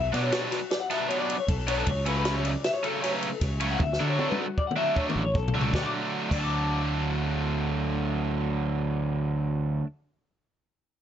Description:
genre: math rock and midwest emo.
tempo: 156 BPM.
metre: 5/4.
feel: straight.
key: D major.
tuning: A4 = 440 Hz.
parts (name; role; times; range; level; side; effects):
electric guitar through a small old amp; arpeggios; 0.0-9.9 s; F#4 to D6; -30 LUFS; left 4 dB; lush chorus.
fuzz fingered electric bass; bass; 0.0-9.8 s; A1 to D3; -30 LUFS; equal; overdrive.
cranked stack guitar; riff; 0.1-9.9 s; B2 to D4; -28 LUFS; right 2 dB; overdrive.
compact cocktail drum kit; drums; 0.1-6.4 s; crash cymbal, kick drum, ride cymbal, snare drum, toms; -31 LUFS; equal; none.
room: light reverb.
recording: nothing above 7.8 kHz.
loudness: -25 LUFS.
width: side -10 dB against mid.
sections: 0.0-5.7 A section; 5.7-9.6 B section.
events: drum fill 3.8-5.7.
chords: 0.0 Bm11; 1.9 F#m/C#; 3.8 Dmaj7; 5.7 D.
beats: 0.33 0.72 1.10 1.49 | 1.88 2.26 2.65 3.03 3.42 | 3.80 4.19 4.58 4.96 5.35 | 5.73 6.12 6.50 6.89 7.28 | 7.66 8.05 8.43 8.82 9.20.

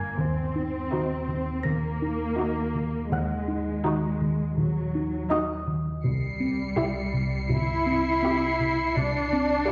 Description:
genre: cinematic, suspense film score.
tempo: 82 BPM.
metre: 4/4.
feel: straight.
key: unclear.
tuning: A4 = 440 Hz.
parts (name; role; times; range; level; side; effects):
rubbery square bass; riff; 0.0-9.7 s; C3 to Eb4; -31 LUFS; equal; none.
muted studio cello section; bass; 0.0-9.7 s; Gb3 to E4; -31 LUFS; equal; none.
deep rumbling drone; drone; 0.0-9.7 s; G1 to Eb2; -37 LUFS; equal; built-in reverb.
music box; texture; 0.0-7.5 s; Eb5 to Bb6; -36 LUFS; equal; none.
muted studio double bass section; bass; 0.2-9.5 s; G1 to Eb2; -38 LUFS; equal; none.
muted studio viola section; accompaniment; 0.9-9.7 s; Eb4 to G4; -33 LUFS; equal; none.
muted chamber violin section; texture; 6.0-9.7 s; C7 to C#7; -36 LUFS; equal; none.
room: wet scoring stage reverb, RT60 1.5 s.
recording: none.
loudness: -27 LUFS.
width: mono.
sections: 0.0-9.7 A section.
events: none.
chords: 0.2 Ebm; 6.0 C.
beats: | 0.19 0.92 1.65 2.38 | 3.12 3.85 4.58 5.31 | 6.04 6.77 7.51 8.24 | 8.97 9.70.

